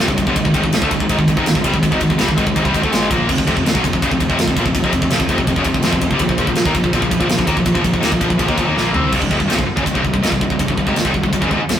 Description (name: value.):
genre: heavy metal.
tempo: 164 BPM.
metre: 4/4.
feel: straight.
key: C minor.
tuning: A4 = 440 Hz.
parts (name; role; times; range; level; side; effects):
scooped high-gain guitar; riff; 0.0-11.8 s; C2 to C4; -22 LUFS; right 5 dB; distortion.
tight distorted guitar; riff; 0.0-11.8 s; C2 to C4; -18 LUFS; left 4 dB; distortion.
fuzz picked electric bass; bass; 0.0-11.8 s; C1 to Eb2; -22 LUFS; right 1 dB; overdrive.
tight metal drum kit; drums; 0.0-11.8 s; crash cymbal, kick drum, ride cymbal, snare drum, toms; -18 LUFS; right 1 dB; none.
room: moderate studio reverb, RT60 0.6 s.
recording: rough rehearsal-room recording, warm saturation.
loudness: -14 LUFS.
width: side -10 dB against mid.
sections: 0.0-9.1 A section; 9.1-11.8 B section.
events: drum fill 8.8-9.1.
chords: 0.4 Ab5; 3.3 F5; 6.2 Bb5; 9.1 C5.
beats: 0.00 | 0.36 0.73 1.09 1.46 | 1.83 2.19 2.56 2.92 | 3.29 3.65 4.02 4.38 | 4.75 5.12 5.48 5.84 | 6.21 6.57 6.94 7.30 | 7.67 8.03 8.40 8.76 | 9.13 9.49 9.86 10.23 | 10.59 10.96 11.33 11.69.